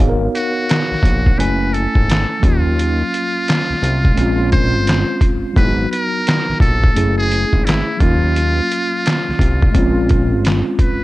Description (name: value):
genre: lo-fi hip hop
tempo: 86 BPM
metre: 4/4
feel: swing 64% on 16ths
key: unclear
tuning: A4 = 441 Hz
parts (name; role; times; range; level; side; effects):
- mellow tine electric piano; accompaniment; 0.0-11.0 s; F#3 to G#5; -20 LUFS; equal; medium stereo tremolo, cassette tape, low-pass filter
- fat analog bass; bass; 0.0-10.6 s; F#1 to D#2; -18 LUFS; equal; none
- trip hop sampler-style drum kit; drums; 0.0-11.0 s; handclaps, hi-hat, kick drum, snare drum; -16 LUFS; equal; none
- trumpet with metal mute; melody; 0.3-11.0 s; E4 to B#4; -21 LUFS; equal; low-pass filter
room: little or no reverb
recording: none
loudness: -13 LUFS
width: side -18 dB against mid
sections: 0.0-11.0 A section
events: none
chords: 0.0 G#m9; 1.4 F#m9; 2.4 D#m9; 4.2 A#m9; 5.6 G#m9; 7.0 F#m9; 8.0 D#m9; 9.8 A#m9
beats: 0.68 1.38 2.08 | 2.78 3.47 4.17 4.87 | 5.57 6.26 6.96 7.66 | 8.36 9.05 9.75 10.45